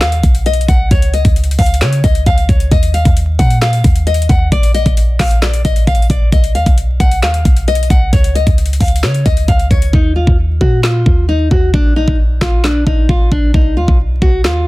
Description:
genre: hip hop, trap.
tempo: 133 BPM.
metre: 4/4.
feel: half-time.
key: Eb minor.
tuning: A4 = 441 Hz.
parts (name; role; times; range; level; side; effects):
nylon-string guitar; melody; 0.0-14.7 s; D4 to F#5; -18 LUFS; left 2 dB; digital delay.
clean 808-style bass; bass; 0.0-14.7 s; Bb1 to Db3; -13 LUFS; equal; none.
trap drum kit; drums; 0.0-14.6 s; handclaps, hi-hat, kick drum, snare drum; -13 LUFS; equal; none.
room: little or no reverb.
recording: dense, heavily limited modern master, vinyl crackle.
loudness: -9 LUFS.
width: side -20 dB against mid.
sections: 0.0-9.9 A section; 9.9-14.7 B section.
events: hi-hats muted 9.9-14.7.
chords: 0.0 B; 0.9 Dbadd9; 2.7 Eb5; 4.5 Bbadd11; 6.3 B; 8.1 Dbadd9; 9.9 Eb5; 11.7 Bbadd11; 13.5 B.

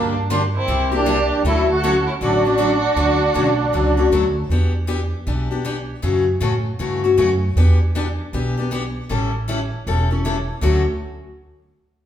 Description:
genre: acoustic string swing (jazz manouche).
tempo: 157 BPM.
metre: 4/4.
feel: swing 63% on 8ths.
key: D major.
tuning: A4 = 442 Hz.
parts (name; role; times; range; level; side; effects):
musette accordion; melody; 0.0-4.1 s; Bb3 to F#4; -19 LUFS; right 2 dB; none.
rich violin; second line; 0.0-4.1 s; D4 to A4; -25 LUFS; right 4 dB; none.
picked steel-string acoustic guitar; accompaniment; 0.0-10.8 s; C3 to A4; -21 LUFS; left 4 dB; none.
upright bass; bass; 0.0-10.8 s; E1 to A2; -21 LUFS; right 1 dB; none.
room: wet large studio reverb, RT60 1.3 s.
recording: band playing live in one room.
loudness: -17 LUFS.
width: side -10 dB against mid.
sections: 0.0-4.5 A section; 4.5-10.6 B section; 10.6-12.1 C section.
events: none.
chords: 0.0 Gm7; 0.7 C9; 1.4 Dmaj7; 4.5 Em7; 6.0 F#m7; 7.6 Em7; 9.1 A7; 10.6 Dmaj7.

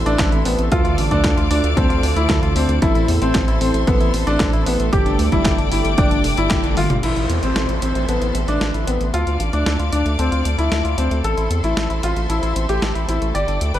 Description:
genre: italo disco.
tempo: 114 BPM.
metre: 4/4.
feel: straight.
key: A minor.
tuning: A4 = 439 Hz.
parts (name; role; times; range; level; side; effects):
bright symphonic string section; sustained chords; 0.0-13.8 s; A4 to D6; -28 LUFS; left 3 dB; shimmer reverb.
direct-recorded clean electric guitar; arpeggios; 0.0-13.8 s; G3 to A4; -29 LUFS; left 4 dB; low-pass filter, ping-pong delay, shimmer reverb.
mellow synth brass; stabs; 0.0-7.0 s; G2 to A4; -25 LUFS; right 3 dB; chorus, shimmer reverb.
round analog bass; bass; 0.0-13.8 s; F1 to E2; -21 LUFS; equal; tube saturation.
clear grand piano; melody; 0.1-13.8 s; B3 to D5; -22 LUFS; left 1 dB; vintage 12-bit sampler grit, ping-pong delay, shimmer reverb.
clean 12-bit digital drum machine; drums; 0.1-13.8 s; crash cymbal, handclaps, hi-hat, snare drum, toms; -25 LUFS; equal; none.
electronic kick drum; drums; 0.2-6.6 s; none; -20 LUFS; equal; overdrive.
downlifter; sound effects; 7.0-11.2 s; none; -31 LUFS; right 1 dB; none.
room: light reverb.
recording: dark, warm production.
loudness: -16 LUFS.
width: side -12 dB against mid.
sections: 0.0-7.0 A section; 7.0-13.8 B section.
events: band accent 6.5; drum fill 6.8; filter sweep on clean electric guitar 7.0-13.8.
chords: 0.0 Am; 0.7 Dm; 2.8 Am; 4.9 Gsus2; 7.0 Am; 9.1 Dm; 11.2 Am.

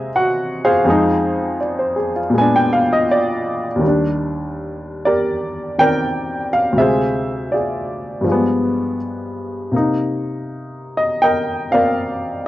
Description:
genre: solo jazz.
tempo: 81 BPM.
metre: 4/4.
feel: swing 68% on 8ths.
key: Eb major.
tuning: A4 = 439 Hz.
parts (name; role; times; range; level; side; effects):
warm baby grand piano; solo; 0.0-12.5 s; D2 to Ab5; -16 LUFS; equal; cassette tape.
room: light reverb.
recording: home recording on cassette.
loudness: -16 LUFS.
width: side -15 dB against mid.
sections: 0.0-3.8 A section; 3.8-12.5 B section.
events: grand piano solo 0.0-3.8.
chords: 0.0 C7alt; 0.9 Fm7; 2.3 Bb7b9; 3.8 Ebmaj7; 6.8 Dm7b5; 8.3 G7b9; 9.7 Cm9.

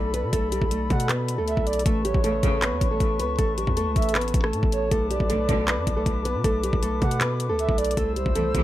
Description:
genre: hip hop, trap.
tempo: 157 BPM.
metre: 4/4.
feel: half-time.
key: B minor.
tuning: A4 = 440 Hz.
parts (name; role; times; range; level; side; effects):
nylon-string guitar; melody; 0.0-8.6 s; G3 to B4; -27 LUFS; right 1 dB; low-pass filter.
mellow flute section; sustained chords; 0.0-8.6 s; A4 to E6; -32 LUFS; left 5 dB; none.
hard-hitting 808-style bass; bass; 0.0-8.6 s; A1 to B2; -27 LUFS; equal; none.
trap drum kit; drums; 0.1-8.6 s; handclaps, hi-hat, kick drum, rim click; -25 LUFS; equal; none.
breathy flute-like synth lead; second line; 0.9-8.6 s; C5 to F#5; -32 LUFS; right 4 dB; chorus, digital delay.
bright studio string section; stabs; 2.2-2.6, 5.3-5.7, 8.4-8.6 s; E2 to E3; -32 LUFS; right 1 dB; digital delay.
room: studio ambience.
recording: none.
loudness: -21 LUFS.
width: side -14 dB against mid.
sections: 0.0-8.6 A section.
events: none.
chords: 0.0 Bm7; 1.9 Aadd9; 4.9 Bm7; 8.0 Cmaj7.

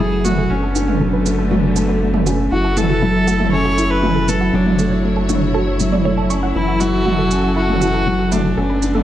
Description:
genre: piano and strings electronica.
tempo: 119 BPM.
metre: 4/4.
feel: straight.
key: F# minor.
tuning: A4 = 441 Hz.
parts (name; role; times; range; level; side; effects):
clear viola; melody; 0.0-9.0 s; C#4 to C#5; -22 LUFS; equal; digital delay.
warm symphonic string section; sustained chords; 0.0-9.0 s; D3 to C#5; -24 LUFS; left 1 dB; none.
analog pluck; arpeggios; 0.0-9.0 s; E4 to C#6; -27 LUFS; right 3 dB; chorus, phaser, digital delay.
felt-muted upright piano; riff; 0.0-9.0 s; E3 to F#4; -18 LUFS; left 1 dB; digital delay.
warm sub bass; bass; 0.0-9.0 s; F#1; -22 LUFS; equal; none.
electronic toms and shaker; drums; 0.2-9.0 s; none; -22 LUFS; right 2 dB; none.
room: moderate recital hall reverb, RT60 1.7 s, small room ambience.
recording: dark, warm production.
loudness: -14 LUFS.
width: side -12 dB against mid.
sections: 0.0-9.0 A section.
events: filter sweep on synth arpeggio sound 0.0-9.0.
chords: 0.0 F#m7; 0.5 Bm9/F#; 2.5 F#m7; 4.5 Dmaj7/F#; 6.6 F#m7.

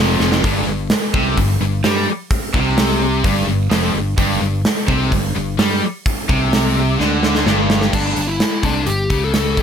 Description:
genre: hard rock.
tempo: 128 BPM.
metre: 4/4.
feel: straight.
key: unclear.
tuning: A4 = 440 Hz.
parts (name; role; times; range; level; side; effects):
heavy high-gain guitar; riff; 0.0-7.9 s; F2 to G3; -24 LUFS; equal; distortion.
overdriven semi-hollow guitar; riff; 0.0-7.9 s; F2 to G3; -22 LUFS; right 10 dB; none.
scooped high-gain guitar; riff; 0.0-9.6 s; F2 to G3; -22 LUFS; left 9 dB; distortion.
fingered electric bass; bass; 0.0-9.6 s; F1 to G2; -21 LUFS; equal; none.
gated 80s drum kit; drums; 0.1-9.6 s; crash cymbal, hi-hat, kick drum, snare drum; -18 LUFS; equal; none.
dark smooth lead guitar; melody; 7.9-9.6 s; D4 to A4; -22 LUFS; left 2 dB; overdrive.
room: little or no reverb.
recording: none.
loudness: -14 LUFS.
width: side -8 dB against mid.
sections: 0.4-7.9 A section; 7.9-9.6 B section.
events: drum fill 0.2, 7.0-7.9.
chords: 0.4 G5.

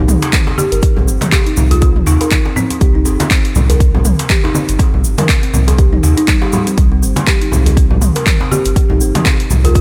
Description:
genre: afro house.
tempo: 121 BPM.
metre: 4/4.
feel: swing 57% on 16ths.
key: C minor.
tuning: A4 = 439 Hz.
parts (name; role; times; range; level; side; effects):
kalimba; arpeggios; 0.0-9.7 s; G3 to Bb4; -22 LUFS; equal; sidechain pumping, tape echo.
warm sub bass; bass; 0.0-9.8 s; G1 to Eb2; -15 LUFS; equal; tube saturation, sidechain pumping.
deep house drum kit; drums; 0.1-9.8 s; handclaps, hi-hat, toms; -20 LUFS; equal; none.
congas; percussion; 0.1-9.7 s; none; -23 LUFS; equal; none.
djembe; percussion; 0.1-9.8 s; none; -25 LUFS; equal; none.
tube shaker; percussion; 0.1-9.8 s; none; -28 LUFS; equal; none.
electronic kick drum; drums; 0.3-9.8 s; none; -15 LUFS; equal; none.
folk marimba with medium hard mallets; melody; 0.6-3.1, 8.5-9.8 s; C4 to G4; -23 LUFS; equal; tape echo.
room: light reverb, studio reverb.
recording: none.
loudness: -12 LUFS.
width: mono.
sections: 0.0-9.8 A section.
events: none.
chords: 0.0 C5.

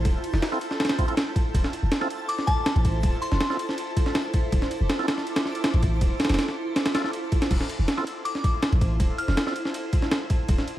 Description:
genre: drum and bass, jungle.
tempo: 161 BPM.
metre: 4/4.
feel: straight.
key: D minor.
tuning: A4 = 440 Hz.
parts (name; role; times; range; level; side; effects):
granular cloud pad; sustained chords; 0.0-10.8 s; E4 to C5; -32 LUFS; right 1 dB; built-in reverb.
long sustained 808-style bass; bass; 0.0-10.6 s; D1 to A1; -24 LUFS; equal; none.
breakbeat sampler-style drum kit; drums; 0.0-10.8 s; crash cymbal, kick drum, ride cymbal, snare drum; -24 LUFS; equal; small room ambience.
twinkling granular texture; texture; 0.0-7.5 s; A5 to A6; -39 LUFS; equal; built-in reverb.
percussive tonewheel organ; stabs; 0.5-9.5 s; C4 to A4; -34 LUFS; right 3 dB; overdrive, chorus vibrato, slow rotary speaker, dub echo.
glassy synth bell; melody; 2.3-3.7, 8.3-9.6 s; A5 to F6; -31 LUFS; left 2 dB; chorus, dub echo.
room: light reverb, digital ambience.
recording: vinyl crackle.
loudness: -22 LUFS.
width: side -14 dB against mid.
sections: 0.0-7.5 A section; 7.5-10.8 A section.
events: drop 0.0-7.5, 7.5-10.8.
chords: 0.0 Dm9; 7.5 Dm9 (rootless).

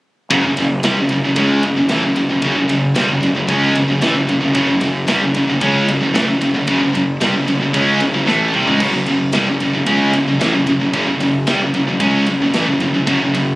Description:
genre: heavy metal.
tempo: 113 BPM.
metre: 4/4.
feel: straight.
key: F# minor.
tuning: A4 = 440 Hz.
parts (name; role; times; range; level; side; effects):
fuzz guitar; riff; 0.3-13.5 s; F#2 to C#4; -20 LUFS; equal; distortion.
high-gain distorted guitar; riff; 0.3-13.6 s; F#2 to C#4; -20 LUFS; left 2 dB; distortion.
scooped high-gain guitar; riff; 0.3-13.6 s; F#2 to C#4; -18 LUFS; right 2 dB; distortion.
fuzz fingered electric bass; bass; 0.3-13.6 s; F#1 to C#2; -21 LUFS; equal; overdrive.
tight metal drum kit; drums; 0.3-13.5 s; crash cymbal, kick drum, ride cymbal, snare drum, toms; -25 LUFS; equal; none.
room: light reverb, studio ambience.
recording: recorded on a phone in the room, club reverb.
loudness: -13 LUFS.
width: side -20 dB against mid.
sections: 0.3-13.6 A section.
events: drum fill 8.3-8.8.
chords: 0.3 F#m.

